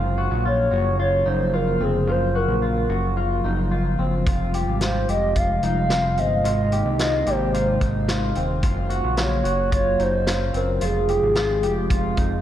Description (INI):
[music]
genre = dream pop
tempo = 110 BPM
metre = 4/4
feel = straight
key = unclear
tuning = A4 = 439 Hz
[part]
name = hollow soft pad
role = sustained chords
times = 0.0-12.4 s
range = C3 to Ab4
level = -26 LUFS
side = equal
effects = chorus
[part]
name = electric guitar through a small old amp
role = arpeggios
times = 0.0-12.4 s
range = C4 to G4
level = -28 LUFS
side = left 2 dB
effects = wide subtle chorus, tape echo
[part]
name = fat analog bass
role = bass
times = 0.0-12.4 s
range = Eb1 to C2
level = -24 LUFS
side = equal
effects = none
[part]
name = hollow clarinet-like synth lead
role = melody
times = 0.5-12.4 s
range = Ab4 to F5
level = -24 LUFS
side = equal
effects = chorus, tape echo
[part]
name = vintage drum kit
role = drums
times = 4.3-12.3 s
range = hi-hat, kick drum, snare drum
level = -26 LUFS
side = equal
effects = none
[sound]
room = light reverb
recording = dark, warm production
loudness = -19 LUFS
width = side -11 dB against mid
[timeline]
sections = 0.0-12.4 A section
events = none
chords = 0.0 Gbmaj7; 4.3 Fmadd9; 6.4 Abadd9; 8.6 Gbmaj7; 10.8 Fmadd9